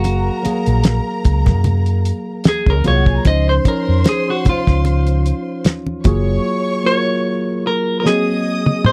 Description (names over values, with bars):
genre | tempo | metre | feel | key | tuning
lush 1970s-style soul | 75 BPM | 4/4 | swing 54% on 16ths | unclear | A4 = 440 Hz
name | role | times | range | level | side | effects
clean electric guitar | melody | 0.0-8.9 s | F4 to Eb5 | -23 LUFS | equal | none
warm symphonic violin section | second line | 0.0-8.9 s | Db4 to Eb6 | -28 LUFS | equal | none
tine electric piano | accompaniment | 0.0-8.9 s | F3 to F5 | -23 LUFS | equal | overdrive
hollow-body short-scale fingered electric bass | bass | 0.0-6.4 s | Gb1 to Gb2 | -18 LUFS | equal | none
cloth-damped thuddy drum kit | drums | 0.0-8.9 s | hi-hat, kick drum, snare drum, toms | -18 LUFS | equal | none
congas | percussion | 0.0-6.3 s | none | -27 LUFS | equal | none
room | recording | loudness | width
little or no reverb | dry, close 1970s-style studio recording | -16 LUFS | mono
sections
0.0-8.9 A section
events
clean electric guitar solo 0.0-8.9; drum fill 8.1-8.9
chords
0.0 Gbmaj9; 3.2 Dbmaj9; 6.1 Gbmaj9; 8.1 Ab9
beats
| 0.04 0.84 1.65 2.45 | 3.25 4.05 4.85 5.65 | 6.45 7.25 8.05 8.85